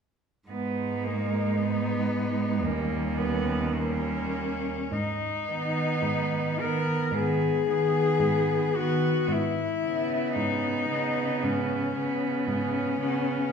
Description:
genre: classical, lyrical piece for cello ensemble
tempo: 56 BPM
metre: 4/4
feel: rubato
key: G# minor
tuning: A4 = 440 Hz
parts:
  - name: rich cello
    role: melody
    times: 0.5-13.5 s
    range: C#4 to A#4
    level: -29 LUFS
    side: left 5 dB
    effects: none
  - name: rich cello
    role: second line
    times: 0.5-13.5 s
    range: G#3 to B3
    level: -30 LUFS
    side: right 5 dB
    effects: none
  - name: rich cello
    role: accompaniment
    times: 0.5-13.5 s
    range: C#3 to B3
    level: -31 LUFS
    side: equal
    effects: none
  - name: rich cello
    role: bass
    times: 0.5-13.4 s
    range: D#2 to G#2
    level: -33 LUFS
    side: right 1 dB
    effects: none
room: wet recital hall reverb, RT60 1.4 s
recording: recorded in a church or concert hall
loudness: -25 LUFS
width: side -6 dB against mid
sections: 0.5-4.9 A section; 4.9-13.5 B section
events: none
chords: 0.5 G#m; 2.6 D#7; 4.9 G#m; 9.3 C#m7/G#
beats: | 0.50 1.58 2.65 3.75 | 4.92 6.04 7.13 8.21 | 9.29 10.37 11.44 12.48

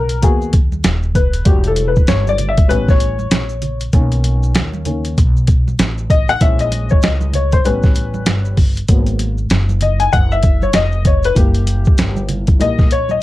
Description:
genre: hip hop, jazz-hop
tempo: 97 BPM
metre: 4/4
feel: swing 60% on 16ths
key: G# minor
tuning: A4 = 439 Hz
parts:
  - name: warm upright piano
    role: accompaniment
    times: 0.0-13.2 s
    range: D#3 to G#5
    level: -19 LUFS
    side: left 4 dB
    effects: none
  - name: upright bass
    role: bass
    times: 0.0-13.2 s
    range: D#1 to D#2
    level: -18 LUFS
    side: equal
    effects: none
  - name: boom bap sampler-style drum kit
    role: drums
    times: 0.1-13.1 s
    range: hi-hat, kick drum, snare drum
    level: -14 LUFS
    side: equal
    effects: none
  - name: maracas and congas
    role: percussion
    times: 0.1-13.2 s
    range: none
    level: -29 LUFS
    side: right 4 dB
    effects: none
room: little or no reverb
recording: dark, warm production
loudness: -12 LUFS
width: side -16 dB against mid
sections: 0.0-13.2 A section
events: upright piano solo 0.0-13.2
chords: 0.0 G#m7; 1.5 Em7; 2.7 A9; 3.9 Bmaj9; 6.4 A#m7b5; 7.7 A9; 8.9 G#m7; 11.4 F#7b9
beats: 0.23 0.85 | 1.47 2.08 2.70 3.32 | 3.94 4.56 5.18 5.79 | 6.41 7.03 7.65 8.27 | 8.89 9.51 10.12 10.74 | 11.36 11.98 12.60 13.22

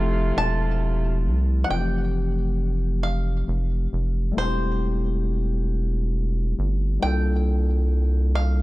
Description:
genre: slow six-eight R&B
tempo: 45 BPM (dotted quarters)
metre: 6/8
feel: straight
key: unclear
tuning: A4 = 437 Hz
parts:
  - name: bluegrass banjo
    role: melody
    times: 0.0-8.6 s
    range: C5 to A5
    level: -29 LUFS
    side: equal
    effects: none
  - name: barky tine electric piano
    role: accompaniment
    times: 0.0-8.6 s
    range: E3 to A4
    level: -29 LUFS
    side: left 5 dB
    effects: none
  - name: clear horn section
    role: stabs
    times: 0.0-1.2 s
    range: C3 to F4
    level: -31 LUFS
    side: right 3 dB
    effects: digital delay
  - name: rubbery square bass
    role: bass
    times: 0.0-8.6 s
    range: E1 to C2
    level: -22 LUFS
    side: equal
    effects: none
room: studio reverb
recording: dark, warm production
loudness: -21 LUFS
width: side -19 dB against mid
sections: 0.0-1.7 A section; 1.7-8.6 B section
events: none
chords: 0.0 Fmaj7; 1.7 Fmaj9; 4.4 Am7/E; 7.0 C13sus4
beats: 0.35 | 1.69 3.02 | 4.35 5.68 | 7.02 8.35

